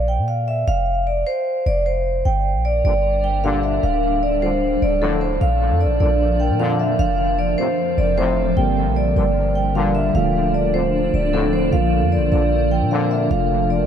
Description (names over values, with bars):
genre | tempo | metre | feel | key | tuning
hip hop | 152 BPM | 4/4 | half-time | G minor | A4 = 440 Hz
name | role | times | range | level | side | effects
vibraphone with medium mallets | melody | 0.0-13.9 s | A4 to G5 | -21 LUFS | right 2 dB | tape echo
clean 808-style bass | bass | 0.0-13.9 s | D1 to Bb2 | -21 LUFS | equal | none
granular cloud pad | sustained chords | 2.9-13.9 s | F3 to Bb4 | -24 LUFS | left 1 dB | built-in reverb
mellow brass ensemble | stabs | 2.8-13.3 s | F2 to D3 | -26 LUFS | left 4 dB | tape echo
mellow tine electric piano | accompaniment | 8.6-13.9 s | C3 to Bb4 | -22 LUFS | right 1 dB | medium stereo tremolo
room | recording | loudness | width
moderate cathedral reverb, RT60 6.2 s | dreamy mix soaked in reverb | -16 LUFS | side -8 dB against mid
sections
0.0-2.3 A section; 2.3-13.9 B section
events
none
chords
0.0 Bb5; 0.7 F5; 2.3 Gm; 3.8 Dm; 5.4 Bb; 7.0 F; 8.6 Gm; 10.1 Dm; 11.7 Bb; 13.3 F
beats
0.28 | 0.68 1.07 1.47 1.86 | 2.25 2.65 3.04 3.44 | 3.83 4.23 4.62 5.02 | 5.41 5.81 6.20 6.60 | 6.99 7.39 7.78 8.18 | 8.57 8.96 9.36 9.75 | 10.15 10.54 10.94 11.33 | 11.73 12.12 12.52 12.91 | 13.31 13.70